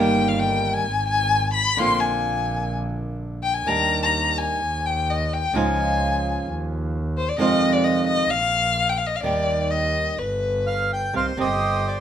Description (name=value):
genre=tango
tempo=129 BPM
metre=4/4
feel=rubato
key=Eb major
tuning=A4 = 440 Hz
part: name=warm violin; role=second line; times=0.0-10.9 s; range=B4 to C6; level=-22 LUFS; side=left 4 dB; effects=none
part: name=flamenco guitar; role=accompaniment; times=0.0-11.5 s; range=C3 to G4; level=-24 LUFS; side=right 4 dB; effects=none
part: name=rich double bass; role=bass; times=0.0-12.0 s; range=G1 to F2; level=-27 LUFS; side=right 1 dB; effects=none
part: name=bandoneon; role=melody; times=10.7-12.0 s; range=G4 to G5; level=-22 LUFS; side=right 3 dB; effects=none
room=moderate large studio reverb, RT60 0.9 s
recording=minimal, uncompressed stereo recording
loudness=-20 LUFS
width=side -9 dB against mid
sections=0.0-11.1 A section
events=violin solo 0.0-11.1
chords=0.0 Eb/G; 0.9 Abm; 1.8 Bbadd9; 3.7 Ebmaj7; 4.6 Ebadd11; 5.5 Dbadd9; 6.5 N.C.; 7.4 Fm7; 8.3 Bb5; 9.2 Ebmaj7; 10.2 G; 11.1 Cm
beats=0.39 0.85 1.32 | 1.78 2.25 2.72 3.19 | 3.66 4.14 4.61 5.08 | 5.54 6.01 6.47 6.93 | 7.39 7.85 8.32 8.78 | 9.25 9.71 10.19 10.66 | 11.14 11.61